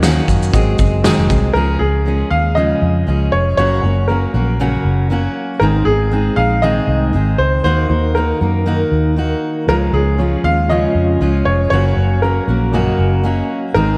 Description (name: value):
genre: acoustic pop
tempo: 118 BPM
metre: 4/4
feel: swing 55% on 16ths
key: Db major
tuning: A4 = 440 Hz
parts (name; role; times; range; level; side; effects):
- fingerpicked steel-string acoustic guitar; accompaniment; 0.0-14.0 s; Gb2 to Ab4; -20 LUFS; equal; none
- overdriven reed electric piano; accompaniment; 0.0-1.6, 9.7-14.0 s; Ab3 to Eb5; -28 LUFS; equal; fast tremolo, slapback echo
- vintage muted fingered electric bass; bass; 0.0-14.0 s; F1 to Gb2; -19 LUFS; equal; none
- loose indie drum kit; drums; 0.0-1.4 s; kick drum, shaker, snare drum; -19 LUFS; equal; none
- bright upright piano; melody; 1.5-14.0 s; Ab4 to F5; -22 LUFS; equal; none
room: moderate lush hall reverb, RT60 2.3 s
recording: big arena sound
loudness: -15 LUFS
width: mono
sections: 0.0-1.6 A section; 1.6-14.0 B section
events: none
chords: 0.0 Ebm7; 0.5 Ab7; 1.6 Db; 3.6 Gb; 5.6 Ab; 7.6 Ebm; 9.7 Db; 11.7 Gb